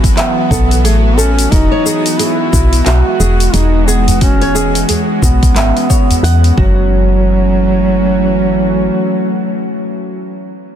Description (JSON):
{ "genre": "organic downtempo", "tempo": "89 BPM", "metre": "4/4", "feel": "swing 60% on 16ths", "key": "F# dorian", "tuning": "A4 = 442 Hz", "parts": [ { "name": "bowed-like drone", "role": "sustained chords", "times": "0.0-9.9 s", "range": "E3 to F#4", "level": "-18 LUFS", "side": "equal", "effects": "built-in reverb, sidechain pumping" }, { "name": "flamenco guitar", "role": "arpeggios", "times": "0.0-7.2 s", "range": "F#4 to F#5", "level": "-20 LUFS", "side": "right 2 dB", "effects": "tape echo" }, { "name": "woody FM bass", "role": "bass", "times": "0.0-8.9 s", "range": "E1 to E2", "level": "-12 LUFS", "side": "equal", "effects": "sidechain pumping" }, { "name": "deep house drum kit", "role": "drums", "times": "0.0-6.6 s", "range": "handclaps, hi-hat, shaker", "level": "-19 LUFS", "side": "left 2 dB", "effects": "none" }, { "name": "electronic kick drum", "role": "drums", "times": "0.0-6.7 s", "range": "none", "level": "-13 LUFS", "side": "equal", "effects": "overdrive" }, { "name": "mellow duduk", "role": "melody", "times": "0.2-9.9 s", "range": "F#3 to F#4", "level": "-16 LUFS", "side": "right 1 dB", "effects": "digital delay" }, { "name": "udu", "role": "percussion", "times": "4.1-6.2 s", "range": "none", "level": "-17 LUFS", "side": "right 1 dB", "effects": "none" } ], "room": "light reverb", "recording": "dense, heavily limited modern master", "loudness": "-9 LUFS", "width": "side -10 dB against mid", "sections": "0.0-6.9 A section; 6.9-9.6 B section", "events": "none", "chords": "0.0 Bsus4; 1.5 Eadd9; 6.6 F#m7" }